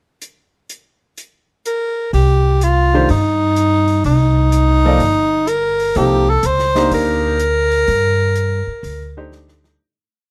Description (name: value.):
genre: modal jazz.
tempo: 125 BPM.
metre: 4/4.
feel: swing 66% on 8ths.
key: C dorian.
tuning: A4 = 440 Hz.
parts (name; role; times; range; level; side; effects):
open jazz drum kit; drums; 0.2-9.8 s; hi-hat, snare drum; -35 LUFS; equal; none.
breathy tenor saxophone; melody; 1.7-9.3 s; Eb4 to C5; -18 LUFS; equal; none.
upright bass; bass; 2.1-9.8 s; G1 to G2; -19 LUFS; equal; none.
clear grand piano; accompaniment; 2.9-9.8 s; C3 to D5; -21 LUFS; equal; none.
room: light reverb.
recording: close, detailed microphones.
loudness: -15 LUFS.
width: mono.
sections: 0.2-2.1 pickup bar; 2.1-9.8 A section.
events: fade-out 7.9-9.8; drum fill 9.3-9.8.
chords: 0.2 N.C.; 2.1 Cm; 6.0 Gmadd9/C.